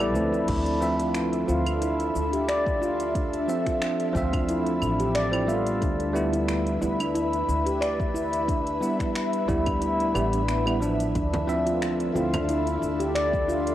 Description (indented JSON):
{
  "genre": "organic downtempo",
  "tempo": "90 BPM",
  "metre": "4/4",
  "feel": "swing 54% on 16ths",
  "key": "D dorian",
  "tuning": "A4 = 440 Hz",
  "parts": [
    { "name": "bell-like tine electric piano", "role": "accompaniment", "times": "0.0-12.3 s", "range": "F3 to E5", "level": "-28 LUFS", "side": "right 1 dB", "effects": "fast stereo tremolo, sidechain pumping, cassette tape, analog delay" },
    { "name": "ethereal airy pad", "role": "sustained chords", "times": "0.0-13.7 s", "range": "D4 to E5", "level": "-31 LUFS", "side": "left 1 dB", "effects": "ensemble chorus, built-in reverb, sidechain pumping, cassette tape" },
    { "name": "handpan", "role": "arpeggios", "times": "0.0-13.7 s", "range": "A3 to D5", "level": "-27 LUFS", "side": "equal", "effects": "cassette tape, analog delay" },
    { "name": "upright bass", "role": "bass", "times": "0.0-13.7 s", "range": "A1 to D2", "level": "-31 LUFS", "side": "equal", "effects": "tube saturation, sidechain pumping" },
    { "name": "organic electronic drum kit", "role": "drums", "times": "0.0-13.7 s", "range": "cabasa, claves, crash cymbal, finger snaps, hi-hat", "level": "-36 LUFS", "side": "right 1 dB", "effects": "cassette tape" },
    { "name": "electronic kick drum", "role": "drums", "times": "0.5-13.5 s", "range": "none", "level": "-29 LUFS", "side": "equal", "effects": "overdrive, cassette tape" },
    { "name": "frame drum", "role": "percussion", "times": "11.3-12.5 s", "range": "none", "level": "-32 LUFS", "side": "right 2 dB", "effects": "none" }
  ],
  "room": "moderate spring reverb, RT60 2.9 s",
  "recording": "home recording on cassette",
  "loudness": "-23 LUFS",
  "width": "side -12 dB against mid",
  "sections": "0.5-13.7 A section",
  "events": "none",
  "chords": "0.5 Dm7; 5.8 Em/D; 11.2 Dm7"
}